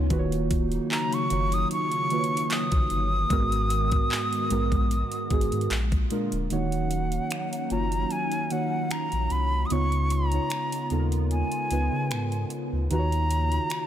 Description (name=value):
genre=contemporary R&B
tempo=75 BPM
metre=4/4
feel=swing 54% on 16ths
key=Eb minor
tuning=A4 = 440 Hz
part: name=muted felt-like synth keys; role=accompaniment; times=0.0-13.9 s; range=Ab2 to Db5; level=-29 LUFS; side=right 2 dB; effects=chorus
part: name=hollow soft pad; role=sustained chords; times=0.0-13.9 s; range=Db3 to Gb4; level=-34 LUFS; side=left 1 dB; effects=ensemble chorus
part: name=warm sub bass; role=bass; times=0.0-13.6 s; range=D1 to Db3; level=-27 LUFS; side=left 1 dB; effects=none
part: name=smooth R&B drum kit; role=drums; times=0.1-13.9 s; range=finger snaps, handclaps, hi-hat, kick drum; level=-29 LUFS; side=equal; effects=none
part: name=breathy silver concert flute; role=melody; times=0.9-13.9 s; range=Gb5 to Eb6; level=-29 LUFS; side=equal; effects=tape echo
room=digital ambience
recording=none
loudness=-23 LUFS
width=side -10 dB against mid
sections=0.0-6.5 A section; 6.5-13.9 B section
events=kick muted 6.5-13.9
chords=0.1 Ebm7; 3.3 Abm7; 5.7 Bb7; 6.5 Ebm7; 9.7 Db7; 12.9 Ebm7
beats=| 0.11 0.91 1.71 2.51 | 3.31 4.11 4.91 5.71 | 6.51 7.31 8.11 8.91 | 9.71 10.51 11.31 12.11 | 12.91 13.71